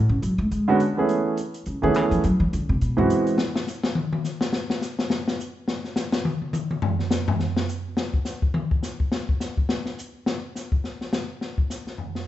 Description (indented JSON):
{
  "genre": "jazz piano trio",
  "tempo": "209 BPM",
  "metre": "4/4",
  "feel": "swing 59% on 8ths",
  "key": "unclear",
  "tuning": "A4 = 440 Hz",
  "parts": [
    { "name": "upright bass", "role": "bass", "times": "0.0-3.0 s", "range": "F#2 to A3", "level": "-22 LUFS", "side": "equal", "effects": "none" },
    { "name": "open jazz drum kit", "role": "drums", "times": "0.2-12.2 s", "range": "hi-hat, kick drum, snare drum, toms", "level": "-24 LUFS", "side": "left 2 dB", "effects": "none" },
    { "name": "warm concert grand piano", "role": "melody", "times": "0.7-3.4 s", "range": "D3 to G#4", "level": "-21 LUFS", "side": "right 2 dB", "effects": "none" }
  ],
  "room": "moderate recital hall reverb, RT60 1.3 s",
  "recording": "recorded in a church or concert hall, nothing above 7.9 kHz",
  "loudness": "-22 LUFS",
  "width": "side -13 dB against mid",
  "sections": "0.0-3.4 A section; 3.4-12.3 A section",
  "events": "upright bass solo 0.0-3.4; drum solo 3.4-12.3",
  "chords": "0.0 A6; 0.5 E6 (rootless); 1.1 Amaj7; 2.2 G#7alt; 3.4 N.C."
}